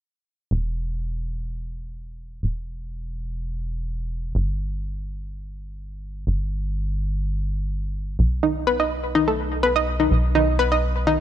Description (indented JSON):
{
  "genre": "house",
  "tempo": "125 BPM",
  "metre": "4/4",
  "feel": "straight",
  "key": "unclear",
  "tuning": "A4 = 440 Hz",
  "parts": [
    { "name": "tight sequencer bass", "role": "bass", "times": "0.5-11.2 s", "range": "E1 to B1", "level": "-25 LUFS", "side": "equal", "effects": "none" },
    { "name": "analog pluck", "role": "arpeggios", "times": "8.4-11.1 s", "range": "D#4 to D#5", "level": "-19 LUFS", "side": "equal", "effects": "chorus, dub echo" }
  ],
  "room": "light reverb",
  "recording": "none",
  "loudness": "-22 LUFS",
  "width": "side -11 dB against mid",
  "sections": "0.5-11.2 A section",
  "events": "none",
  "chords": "0.5 N.C.; 8.2 B",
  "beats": "| 0.51 0.99 1.47 1.95 | 2.43 2.91 3.39 3.87 | 4.35 4.83 5.31 5.79 | 6.27 6.75 7.23 7.71 | 8.19 8.67 9.15 9.63 | 10.11 10.59 11.07"
}